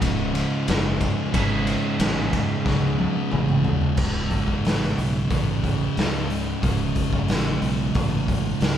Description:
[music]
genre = stoner and doom metal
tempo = 91 BPM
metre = 4/4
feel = straight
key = C# minor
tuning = A4 = 440 Hz
[part]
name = crunchy overdriven guitar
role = riff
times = 0.0-4.0 s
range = C#2 to E4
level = -28 LUFS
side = right 1 dB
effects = none
[part]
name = thick fuzz guitar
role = riff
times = 0.0-8.8 s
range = C#2 to C#3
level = -28 LUFS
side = left 6 dB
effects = distortion
[part]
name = thick fuzz guitar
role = riff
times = 0.0-8.8 s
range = C#2 to C#3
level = -27 LUFS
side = right 8 dB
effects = distortion
[part]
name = fingered electric bass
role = bass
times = 0.0-8.8 s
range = C#1 to C#2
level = -28 LUFS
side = equal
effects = overdrive
[part]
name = raw garage drum kit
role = drums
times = 0.0-8.8 s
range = crash cymbal, hi-hat, kick drum, ride cymbal, snare drum, toms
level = -24 LUFS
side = left 1 dB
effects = none
[sound]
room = light reverb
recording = band playing live in one room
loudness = -20 LUFS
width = side -10 dB against mid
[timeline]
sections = 0.0-4.0 A section; 4.0-8.8 B section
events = drum fill 2.7-4.0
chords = 0.0 C#m; 4.0 C#5

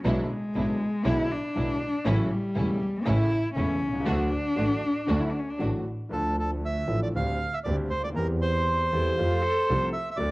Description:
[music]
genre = tango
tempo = 119 BPM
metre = 4/4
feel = rubato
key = D major, D minor from 6.1 s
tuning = A4 = 440 Hz
[part]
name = dark cello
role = second line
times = 0.0-5.6, 8.9-9.8 s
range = F#3 to A4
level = -28 LUFS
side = left 1 dB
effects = cassette tape
[part]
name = warm concert grand piano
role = accompaniment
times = 0.0-10.3 s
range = E1 to A4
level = -31 LUFS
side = equal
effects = cassette tape
[part]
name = warm symphonic string section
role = stabs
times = 0.0-5.8 s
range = G#3 to F#4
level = -33 LUFS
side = right 1 dB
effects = cassette tape, analog delay
[part]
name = dark double bass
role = bass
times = 0.0-10.3 s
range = E1 to F2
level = -30 LUFS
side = right 1 dB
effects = tube saturation
[part]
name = bandoneon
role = melody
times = 6.1-10.3 s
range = A4 to F5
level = -28 LUFS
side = right 2 dB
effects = cassette tape
[part]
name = vibraphone with medium hard mallets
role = second line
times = 8.9-9.8 s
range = G4 to A4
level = -34 LUFS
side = equal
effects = none
[sound]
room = light reverb, small room reverb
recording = home recording on cassette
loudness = -24 LUFS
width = side -21 dB against mid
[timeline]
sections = 0.0-6.1 A section; 6.1-10.3 B section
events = cello solo 0.0-6.1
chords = 0.0 E7/B; 2.1 A; 4.1 D; 6.1 Dm; 7.1 Gsus4/D; 8.2 C/E; 9.2 Fadd9

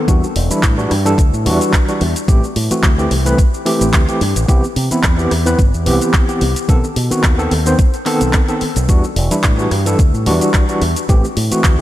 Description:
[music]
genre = nu-disco, nu disco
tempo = 109 BPM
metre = 4/4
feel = swing 54% on 16ths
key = E minor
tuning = A4 = 439 Hz
[part]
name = overdriven tine electric piano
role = accompaniment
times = 0.0-11.8 s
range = D#3 to C5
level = -17 LUFS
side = equal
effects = fast tremolo, sidechain pumping, ping-pong delay
[part]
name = fingered electric bass with an envelope filter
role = bass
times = 0.1-11.8 s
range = E1 to C3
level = -17 LUFS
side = equal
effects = sidechain pumping
[part]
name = electronic kick drum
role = drums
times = 0.1-11.8 s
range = none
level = -13 LUFS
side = equal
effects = overdrive
[part]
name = pop drum kit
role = drums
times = 0.1-11.8 s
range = handclaps, hi-hat, rim click, shaker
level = -22 LUFS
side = equal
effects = overdrive
[sound]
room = light reverb, digital ambience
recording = none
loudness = -12 LUFS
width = side -14 dB against mid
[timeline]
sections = 0.0-11.8 A section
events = none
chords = 0.1 Em9; 2.3 Am7; 4.5 Cmaj7; 6.7 B7b9; 8.9 Em9; 11.1 Am7

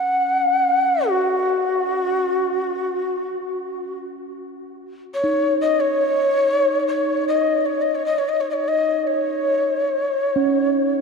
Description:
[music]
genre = world meditative, free-time meditation music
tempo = free time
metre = none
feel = none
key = unclear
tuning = A4 = 441 Hz
[part]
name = breathy mellow Native American-style cedar flute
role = melody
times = 0.0-11.0 s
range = F#4 to F#5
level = -19 LUFS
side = left 1 dB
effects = none
[part]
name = bronze singing bowl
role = texture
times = 0.0-11.0 s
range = C#4 to D#4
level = -27 LUFS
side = right 3 dB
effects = none
[sound]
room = wet cathedral reverb, RT60 5.5 s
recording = dark, warm production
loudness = -18 LUFS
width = side -4 dB against mid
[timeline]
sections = 0.0-4.5 A section; 4.5-11.0 A section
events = none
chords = none

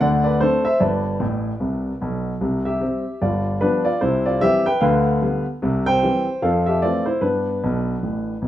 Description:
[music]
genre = jazz, stride piano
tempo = 150 BPM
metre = 4/4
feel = swing 61% on 8ths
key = C major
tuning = A4 = 439 Hz
[part]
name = warm grand piano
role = solo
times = 0.0-8.5 s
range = G1 to G5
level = -18 LUFS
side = equal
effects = none
[sound]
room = wet studio reverb, RT60 0.6 s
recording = rough home demo mix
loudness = -18 LUFS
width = side -12 dB against mid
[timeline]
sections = 0.0-2.4 A section; 2.4-8.5 A section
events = grand piano fill 1.2-2.4, 7.6-8.5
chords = 0.0 D5; 0.8 G; 2.4 C; 3.2 G7; 4.0 C; 4.8 G7/D; 5.6 C; 6.4 Fmaj7; 7.2 G

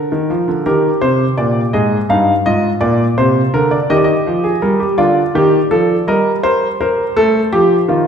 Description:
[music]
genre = classical, baroque-style 3-part fugue for grand piano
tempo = 55 BPM (dotted quarters)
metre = 6/8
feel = straight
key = Eb major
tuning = A4 = 440 Hz
[part]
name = warm concert grand piano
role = solo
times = 0.0-8.1 s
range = G2 to F5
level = -12 LUFS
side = equal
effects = none
[sound]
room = wet recital hall reverb, RT60 1.5 s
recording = heard from further back in the room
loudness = -12 LUFS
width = side -7 dB against mid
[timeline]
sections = 0.0-8.1 A section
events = none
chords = 0.0 Bb/D; 0.7 Eb; 1.7 Ab5; 2.8 Bb; 3.9 Eb; 5.0 Dmadd11; 6.1 Eb/G; 7.2 F7

